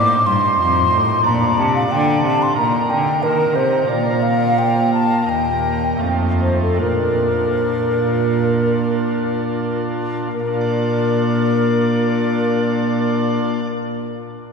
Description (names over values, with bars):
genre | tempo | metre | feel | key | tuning
classical, baroque-style sonata movement with continuo | 63-92 BPM | 4/4 | rubato | Bb major | A4 = 444 Hz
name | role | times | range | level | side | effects
mellow baroque flute | melody | 0.0-13.4 s | A4 to D6 | -19 LUFS | left 1 dB | none
pipe organ, cornet | accompaniment | 0.0-13.7 s | Eb2 to D5 | -22 LUFS | right 1 dB | none
rich cello | bass | 0.0-13.4 s | Eb2 to Eb3 | -20 LUFS | right 1 dB | none
room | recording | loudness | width
wet cathedral reverb, RT60 4.7 s | recorded in a church or concert hall | -15 LUFS | side -5 dB against mid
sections
0.0-10.3 A section; 10.3-14.1 B section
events
slowing down 2.6-10.3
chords
0.0 F7; 1.3 Bb; 2.6 Eb5/Bb; 3.9 Bb5; 5.3 Eb; 6.0 F7; 6.8 Bb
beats
0.59 | 1.25 1.92 2.57 3.23 | 3.90 4.58 5.29 6.02 | 6.80 7.64 8.50 9.39 | 10.33 11.28 12.21 13.15